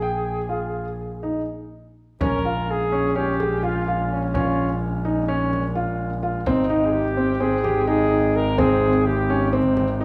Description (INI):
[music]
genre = contemporary instrumental, chamber music in an uneven meter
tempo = 253 BPM (eighths)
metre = 9/8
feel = straight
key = Bb dorian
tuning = A4 = 441 Hz
[part]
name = mellow flugelhorn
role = melody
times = 0.0-10.0 s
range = Db4 to Bb4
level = -27 LUFS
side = equal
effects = none
[part]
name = dark baby grand piano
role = arpeggios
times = 0.0-10.0 s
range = C4 to G5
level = -26 LUFS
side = equal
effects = none
[part]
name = clear double bass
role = bass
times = 0.0-10.0 s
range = Ab1 to Bb1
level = -28 LUFS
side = equal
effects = none
[part]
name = clear woodwind section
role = sustained chords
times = 2.2-10.0 s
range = Bb2 to G5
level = -36 LUFS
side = equal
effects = none
[part]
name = frame drum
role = percussion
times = 2.2-10.0 s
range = none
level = -33 LUFS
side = equal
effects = none
[sound]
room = moderate recital hall reverb, RT60 1.4 s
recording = recorded in a church or concert hall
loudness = -22 LUFS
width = mono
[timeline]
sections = 0.0-2.2 A section; 2.2-10.0 B section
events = stop 1.5-2.2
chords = 0.0 Fm/Bb; 2.2 Bbm7; 6.5 Abmaj7